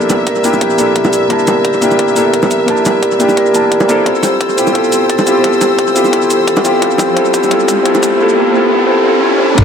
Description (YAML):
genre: liquid drum and bass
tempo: 174 BPM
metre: 4/4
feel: swing 53% on 16ths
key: G dorian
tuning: A4 = 442 Hz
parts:
  - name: felt-muted upright piano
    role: accompaniment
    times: 0.0-9.6 s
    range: Bb3 to A5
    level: -13 LUFS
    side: left 1 dB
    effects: tape echo
  - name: rich studio string section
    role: sustained chords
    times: 0.0-9.6 s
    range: Bb3 to E6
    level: -21 LUFS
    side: left 3 dB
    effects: none
  - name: vibraphone with medium mallets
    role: arpeggios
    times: 0.0-9.4 s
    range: G4 to D5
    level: -14 LUFS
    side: right 1 dB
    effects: low-pass filter, tape echo
  - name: warm sub bass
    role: bass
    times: 0.0-9.6 s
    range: D1 to C2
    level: -31 LUFS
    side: equal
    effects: high-pass filter
  - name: electronic hi-hat and shaker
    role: drums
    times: 0.1-9.6 s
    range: none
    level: -22 LUFS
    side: equal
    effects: high-pass filter on hats, high-pass filter on snare, high-pass filter on perc, high-pass filter on room, tape echo
  - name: bongos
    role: percussion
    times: 0.1-8.0 s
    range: none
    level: -21 LUFS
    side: right 1 dB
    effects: tape echo
  - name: electronic kick drum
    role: drums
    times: 0.3-9.6 s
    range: none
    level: -19 LUFS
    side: equal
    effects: high-pass filter on kick, high-pass filter on room
  - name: riser and sub drop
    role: sound effects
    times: 5.9-9.6 s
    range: none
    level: -18 LUFS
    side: right 2 dB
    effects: none
  - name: ride cymbal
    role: drums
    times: 9.6 s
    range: none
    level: barely audible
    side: none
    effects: none
room: moderate echo chamber reverb, RT60 2.2 s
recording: echo-heavy mix, high-pass filter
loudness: -9 LUFS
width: side -7 dB against mid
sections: 0.0-9.6 A section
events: build-up 0.0-9.6; drum fill 4.1-8.2; riser 5.9-9.6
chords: 0.0 Gm69; 4.1 Dm9; 9.4 C6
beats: 0.27 0.61 0.96 | 1.30 1.65 1.99 2.34 | 2.68 3.03 3.37 3.72 | 4.06 4.41 4.75 5.10 | 5.44 5.79 6.13 6.47 | 6.82 7.17 7.51 7.85 | 8.20 8.54 8.89 9.23 | 9.58